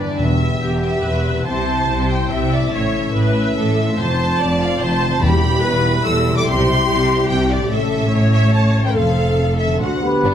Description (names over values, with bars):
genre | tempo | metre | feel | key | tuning
cinematic | 144 BPM | 3/4 | straight | E phrygian | A4 = 437 Hz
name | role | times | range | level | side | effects
rich symphonic violin section | melody | 0.0-10.3 s | D4 to E6 | -25 LUFS | equal | none
warm symphonic violin section | second line | 0.0-10.3 s | B3 to E6 | -25 LUFS | equal | none
rich symphonic viola section | accompaniment | 0.0-10.3 s | B3 to E5 | -22 LUFS | equal | none
concert harp | arpeggios | 0.0-10.3 s | E2 to D5 | -27 LUFS | left 8 dB | none
mellow French horn section | sustained chords | 0.2-10.3 s | G3 to G4 | -24 LUFS | left 4 dB | none
rich studio double bass section | bass | 0.2-10.3 s | E1 to D2 | -20 LUFS | right 2 dB | none
rich symphonic cello section | bass | 0.2-10.3 s | D2 to C3 | -22 LUFS | right 1 dB | none
timpani | percussion | 0.2-0.8, 5.2-5.8 s | E2 | -23 LUFS | left 1 dB | none
mellow hollow silver concert flute | second line | 10.0-10.3 s | G4 | -21 LUFS | left 1 dB | none
mellow trumpet section | stabs | 10.0-10.3 s | B4 | -18 LUFS | equal | none
room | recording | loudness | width
moderate recital hall reverb, RT60 1.6 s | none | -15 LUFS | side -9 dB against mid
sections
0.2-10.2 A section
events
none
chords
0.2 Em; 1.5 C; 2.7 A; 4.0 F; 5.2 Em; 6.5 C; 7.7 A; 9.0 F; 9.8 D7